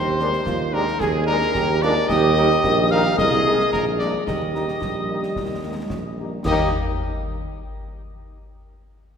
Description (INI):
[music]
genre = military-style march for wind band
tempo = 110 BPM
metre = 2/4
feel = straight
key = Eb major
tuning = A4 = 440 Hz
[part]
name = warm cornet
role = melody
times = 0.0-6.7 s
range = Ab4 to F5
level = -25 LUFS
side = equal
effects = none
[part]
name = mellow piccolo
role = second line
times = 0.0-6.8 s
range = Ab5 to F6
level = -28 LUFS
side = left 3 dB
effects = none
[part]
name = warm euphonium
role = second line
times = 0.0-6.2 s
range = F4 to Ab4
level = -25 LUFS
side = right 3 dB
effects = none
[part]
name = warm tuba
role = bass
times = 0.0-6.7 s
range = Bb1 to Eb2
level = -24 LUFS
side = right 1 dB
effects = none
[part]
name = mellow French horn section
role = accompaniment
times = 0.2-6.7 s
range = G3 to Bb4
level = -29 LUFS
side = left 5 dB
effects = none
[part]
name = mellow trombone section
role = sustained chords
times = 0.2-6.7 s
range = G3 to Eb4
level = -31 LUFS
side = right 2 dB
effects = none
[part]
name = concert snare drum, concert bass drum and clash cymbals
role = drums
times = 0.2-6.8 s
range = none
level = -30 LUFS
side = left 1 dB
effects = none
[sound]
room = wet church reverb, RT60 3.1 s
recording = recorded in a church or concert hall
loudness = -18 LUFS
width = side -7 dB against mid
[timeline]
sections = 0.0-6.5 A section; 6.5-7.5 B section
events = none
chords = 0.0 Bb7/Eb; 2.1 Eb; 3.2 Ab/C; 3.7 Bb7; 4.3 Eb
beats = 0.47 | 1.01 1.56 | 2.10 2.65 | 3.19 3.74 | 4.28 4.83 | 5.37 5.92 | 6.46